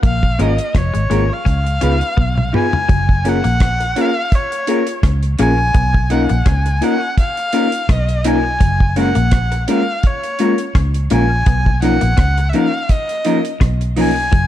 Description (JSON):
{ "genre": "lovers rock reggae", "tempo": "84 BPM", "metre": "4/4", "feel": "swing 55% on 16ths", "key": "F# major", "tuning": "A4 = 440 Hz", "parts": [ { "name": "twangy electric guitar", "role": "riff", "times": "0.0-14.5 s", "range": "E#3 to C#4", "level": "-28 LUFS", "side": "left 9 dB", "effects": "dub echo" }, { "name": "vintage muted fingered electric bass", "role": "bass", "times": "0.0-14.5 s", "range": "E#1 to C#2", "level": "-17 LUFS", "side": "equal", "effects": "none" }, { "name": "deep reggae drum kit", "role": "drums", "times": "0.0-14.5 s", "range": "hi-hat, kick drum, rim click, toms", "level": "-16 LUFS", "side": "equal", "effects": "none" }, { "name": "warm erhu", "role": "melody", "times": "0.1-14.5 s", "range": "C#5 to G#5", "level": "-20 LUFS", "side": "equal", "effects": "tape echo" }, { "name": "mellow FM electric piano", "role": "accompaniment", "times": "0.4-14.1 s", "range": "E#3 to G#4", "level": "-20 LUFS", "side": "left 3 dB", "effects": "chorus" }, { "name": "electric guitar through a small old amp", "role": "stabs", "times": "0.4-14.1 s", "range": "C#4 to B4", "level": "-24 LUFS", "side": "right 2 dB", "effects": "none" } ], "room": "small room reverb", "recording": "dark, warm production", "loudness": "-13 LUFS", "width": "side -12 dB against mid", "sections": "0.0-2.9 A section; 2.9-14.5 B section", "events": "drum fill 2.2-2.9", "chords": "0.0 A#m7; 1.5 C#9; 2.9 F#maj7; 5.8 Bmaj9#11; 8.6 F#maj7; 11.5 Bmaj9#11" }